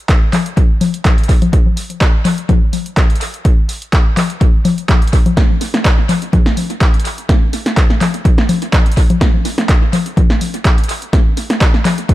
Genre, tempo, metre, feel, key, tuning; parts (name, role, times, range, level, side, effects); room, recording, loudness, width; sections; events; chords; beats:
house; 125 BPM; 4/4; swing 54% on 16ths
electronic kick drum; drums; 0.1-12.1 s; -11 LUFS; equal
punchy analog drum machine; drums; 0.1-12.1 s; congas, handclaps, hi-hat, snare drum; -16 LUFS; left 2 dB; tape echo
little or no reverb; echo-heavy mix; -11 LUFS; side -16 dB against mid
0.0-12.1 A section
0.09 0.57 1.05 | 1.53 2.01 2.49 2.97 | 3.45 3.93 4.41 4.89 | 5.37 5.85 6.33 6.81 | 7.29 7.77 8.25 8.73 | 9.21 9.69 10.17 10.65 | 11.13 11.61 12.09